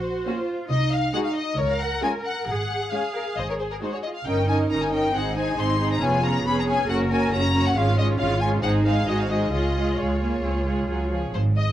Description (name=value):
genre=quick classical-period movement for string orchestra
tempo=136 BPM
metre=4/4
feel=straight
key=Db major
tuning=A4 = 440 Hz
part: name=rich studio violin section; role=melody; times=0.0-11.7 s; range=Bb4 to C6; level=-27 LUFS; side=left 4 dB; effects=none
part: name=dark studio double bass section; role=bass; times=0.0-11.7 s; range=F1 to Db2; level=-26 LUFS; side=right 1 dB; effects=none
part: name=rich studio cello section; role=bass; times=0.0-11.7 s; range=Ab2 to Bb4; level=-28 LUFS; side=right 1 dB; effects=none
part: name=rich studio violin section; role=second line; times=0.3-11.3 s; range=F4 to Eb5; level=-30 LUFS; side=left 1 dB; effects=none
part: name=rich studio viola section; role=accompaniment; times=0.3-11.3 s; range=F3 to F4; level=-27 LUFS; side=right 2 dB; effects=none
room=light reverb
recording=worn, warbling old tape, cassette tape, warbly pitch drift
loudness=-21 LUFS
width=side -12 dB against mid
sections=0.0-11.3 A section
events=none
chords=0.0 Gb/Bb; 0.7 Ab/C (rootless); 1.6 Db; 2.5 Db/Ab (rootless); 3.4 N.C.; 4.3 Eb7/G; 5.1 Ab; 6.0 Db7/F; 6.9 Gb; 7.8 Db/Ab; 8.6 Ab7; 9.5 Db